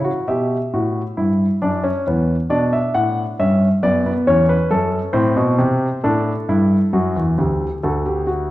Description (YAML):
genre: classical, baroque-style 3-part fugue for grand piano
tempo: 67 BPM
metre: 3/4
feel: straight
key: unclear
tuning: A4 = 440 Hz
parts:
  - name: warm grand piano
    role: solo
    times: 0.0-8.5 s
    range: D2 to F#5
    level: -16 LUFS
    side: equal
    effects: none
room: wet recital hall reverb, RT60 1.3 s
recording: dark, warm production, vinyl crackle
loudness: -16 LUFS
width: side -16 dB against mid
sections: 0.0-8.5 A section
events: none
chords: 0.0 A; 1.6 D/F#; 2.5 G; 4.3 A69/E; 5.2 Am7; 7.8 D